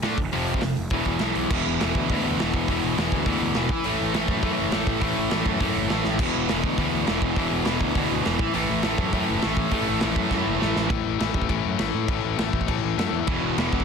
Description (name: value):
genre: punk rock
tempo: 204 BPM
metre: 4/4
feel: straight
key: unclear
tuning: A4 = 441 Hz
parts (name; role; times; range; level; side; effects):
- crunchy overdriven guitar; riff; 0.0-13.8 s; E2 to D4; -26 LUFS; left 14 dB; none
- distorted electric guitar; riff; 0.0-10.9, 13.3-13.8 s; E2 to D4; -26 LUFS; right 15 dB; overdrive
- fuzz picked electric bass; bass; 0.0-13.8 s; E1 to A2; -29 LUFS; equal; overdrive
- big rock drum kit; drums; 0.0-13.8 s; crash cymbal, hi-hat, kick drum, snare drum, splash cymbal; -27 LUFS; right 1 dB; none
room: little or no reverb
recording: dense, heavily limited modern master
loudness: -21 LUFS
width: side -6 dB against mid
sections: 0.0-1.5 A section; 1.5-10.9 B section; 10.9-13.8 C section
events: drum fill 6.0, 10.3-10.9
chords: 0.2 F5; 0.9 E5; 3.7 A5; 6.2 E5; 8.4 A5; 13.3 E5